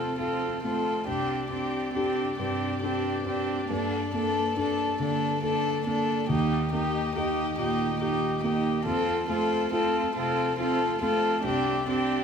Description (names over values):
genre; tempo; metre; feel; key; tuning
neoclassical piano and strings; 70 BPM; 3/4; rubato; unclear; A4 = 437 Hz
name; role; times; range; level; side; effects
warm violin; melody; 0.0-12.2 s; G4 to A4; -29 LUFS; left 4 dB; none
rich cello; second line; 0.0-12.2 s; Bb3 to C4; -33 LUFS; right 11 dB; none
dark viola; accompaniment; 0.0-12.2 s; D4 to F4; -33 LUFS; right 6 dB; none
felt-muted upright piano; accompaniment; 0.0-12.2 s; C2 to A4; -31 LUFS; left 2 dB; none
warm chamber string section; sustained chords; 0.0-12.2 s; Bb3 to Eb5; -38 LUFS; right 1 dB; none
room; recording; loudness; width
light reverb; minimal, uncompressed stereo recording; -25 LUFS; side -6 dB against mid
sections
0.0-12.2 A section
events
none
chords
0.0 F; 1.1 Csus2; 3.7 Gmadd9; 6.3 Eb; 8.9 F; 11.4 Csus2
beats
0.19 | 1.07 1.95 2.83 | 3.70 4.57 5.43 | 6.29 7.15 8.00 | 8.86 9.72 10.59 | 11.45